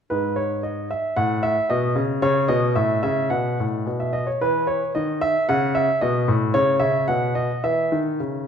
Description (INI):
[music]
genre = classical-period piano sonatina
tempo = 112 BPM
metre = 2/4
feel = rubato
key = unclear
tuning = A4 = 435 Hz
[part]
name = warm concert grand piano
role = solo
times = 0.1-8.5 s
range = G#2 to F#5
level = -19 LUFS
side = equal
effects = none
[sound]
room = moderate recital hall reverb, RT60 1.6 s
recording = minimal, uncompressed stereo recording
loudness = -19 LUFS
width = side -7 dB against mid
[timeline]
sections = 0.1-8.5 A section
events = none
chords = 0.1 N.C.; 1.7 Badd9; 2.8 A; 3.3 B5; 3.9 N.C.; 4.4 C#m9; 5.5 N.C.; 6.0 B7; 6.5 N.C.; 7.6 E5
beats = | 0.10 0.64 | 1.17 1.70 | 2.22 2.75 | 3.30 3.85 | 4.41 4.95 | 5.48 6.01 | 6.54 7.08 | 7.63 8.20